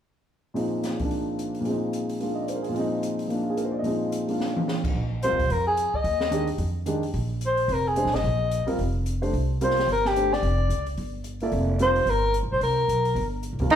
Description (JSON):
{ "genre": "modal jazz", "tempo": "219 BPM", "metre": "4/4", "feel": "swing 59% on 8ths", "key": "Bb mixolydian", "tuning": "A4 = 440 Hz", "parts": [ { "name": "warm grand piano", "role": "accompaniment", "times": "0.5-13.8 s", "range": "Eb2 to Eb5", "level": "-27 LUFS", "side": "equal", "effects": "none" }, { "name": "open jazz drum kit", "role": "drums", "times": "0.6-13.8 s", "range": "crash cymbal, hi-hat, kick drum, ride cymbal, snare drum, toms", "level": "-34 LUFS", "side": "right 1 dB", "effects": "none" }, { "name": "upright bass", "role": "bass", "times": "4.9-13.8 s", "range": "F1 to F2", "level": "-27 LUFS", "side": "equal", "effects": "none" }, { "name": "breathy soprano saxophone", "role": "melody", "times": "5.2-13.8 s", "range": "G4 to Eb5", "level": "-24 LUFS", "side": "left 1 dB", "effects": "none" }, { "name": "warm tenor saxophone", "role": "second line", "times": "13.7-13.8 s", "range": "Eb4", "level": "-14 LUFS", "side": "right 2 dB", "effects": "none" } ], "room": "moderate large studio reverb, RT60 1.1 s", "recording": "band playing live in one room", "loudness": "-23 LUFS", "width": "side -9 dB against mid", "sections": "0.6-5.0 A section; 5.0-13.7 B section", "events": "drum fill 4.4", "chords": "0.6 Bb9sus4; 9.3 C9sus4" }